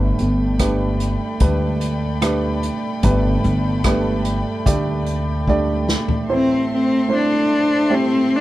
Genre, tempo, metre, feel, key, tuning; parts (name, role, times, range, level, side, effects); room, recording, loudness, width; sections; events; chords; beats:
acoustic folk-pop ballad; 74 BPM; 4/4; straight; A4 = 445 Hz
warm upright piano; accompaniment; 0.0-8.4 s; G1 to D5; -21 LUFS; right 3 dB
dark chamber string section; sustained chords; 0.0-8.4 s; A4 to C6; -29 LUFS; left 4 dB
upright bass; bass; 0.0-5.9 s; G1 to D2; -20 LUFS; equal
unplugged drum kit; drums; 0.2-6.3 s; hi-hat, kick drum, rim click, snare drum, toms; -22 LUFS; equal
dark cello; melody; 6.3-8.4 s; C4 to D4; -16 LUFS; left 1 dB
little or no reverb; -16 LUFS; side -15 dB against mid
0.0-6.3 A section; 6.3-8.4 B section
drum fill 5.5-6.3
0.0 Gadd9; 6.3 Am
0.61 1.42 2.23 | 3.04 3.85 4.67 5.48 | 6.29 7.10 7.92